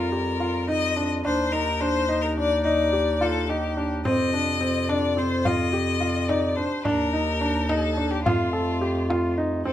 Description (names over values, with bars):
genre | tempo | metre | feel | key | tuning
contemporary instrumental, chamber music in an uneven meter | 214 BPM (eighths) | 5/8 | straight | F mixolydian | A4 = 438 Hz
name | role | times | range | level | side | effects
rich violin | melody | 0.0-9.7 s | F4 to Eb5 | -26 LUFS | left 4 dB | none
clear woodwind section | sustained chords | 0.0-9.7 s | C3 to F4 | -34 LUFS | right 1 dB | none
warm grand piano | arpeggios | 0.0-9.7 s | C4 to A4 | -26 LUFS | right 1 dB | none
dark bass clarinet | bass | 0.0-9.7 s | Eb2 to F2 | -27 LUFS | equal | none
frame drum | percussion | 4.1-9.4 s | none | -30 LUFS | left 1 dB | none
room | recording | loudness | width
light reverb | close, detailed microphones | -21 LUFS | side -12 dB against mid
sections
0.0-9.7 A section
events
none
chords
0.0 Fsus2; 1.2 Ebmaj7; 4.1 Fsus2; 6.9 Ebmaj7; 8.3 F